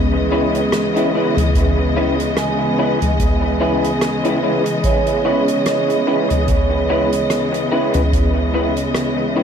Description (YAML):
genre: ambient dub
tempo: 73 BPM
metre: 4/4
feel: swing 57% on 16ths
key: C# minor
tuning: A4 = 442 Hz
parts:
  - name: dark studio string section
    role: sustained chords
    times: 0.0-9.4 s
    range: C#3 to D#5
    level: -19 LUFS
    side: left 1 dB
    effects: vintage 12-bit sampler grit
  - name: vibraphone with medium mallets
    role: arpeggios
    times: 0.0-9.4 s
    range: B3 to G#5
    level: -22 LUFS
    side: right 5 dB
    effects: tape echo
  - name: electric guitar through a small old amp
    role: stabs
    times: 0.3-9.4 s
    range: C#4 to B4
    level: -21 LUFS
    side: left 1 dB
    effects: ensemble chorus, dub echo
  - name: soft-mallet drum kit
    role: drums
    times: 0.5-9.1 s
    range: hi-hat, rim click, toms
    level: -22 LUFS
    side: equal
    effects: dub echo
  - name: electronic kick drum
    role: drums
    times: 1.6-8.3 s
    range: none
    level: -20 LUFS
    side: equal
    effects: none
room: light reverb, studio reverb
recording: none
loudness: -15 LUFS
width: side -7 dB against mid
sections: 0.0-9.4 A section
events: none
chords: 0.0 C#m7